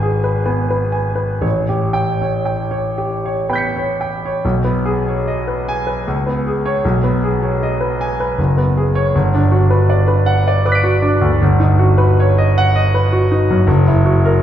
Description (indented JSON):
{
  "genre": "classical, impressionist solo piano",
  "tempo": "58-82 BPM",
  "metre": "3/4",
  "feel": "rubato",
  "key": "unclear",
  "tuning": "A4 = 439 Hz",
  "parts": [
    { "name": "clear concert grand piano", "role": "solo", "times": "0.0-14.4 s", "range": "F#1 to D7", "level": "-13 LUFS", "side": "equal", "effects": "none" }
  ],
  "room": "wet concert hall reverb, RT60 2.4 s",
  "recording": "heard from further back in the room",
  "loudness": "-13 LUFS",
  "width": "side -10 dB against mid",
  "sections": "0.0-4.4 A section; 4.4-14.4 B section",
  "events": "none",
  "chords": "0.0 G#m; 1.4 A9; 4.4 B69; 6.1 C#5; 6.8 B69; 8.4 F#sus24; 9.1 Gmaj7; 11.4 Badd9/G; 13.7 F#"
}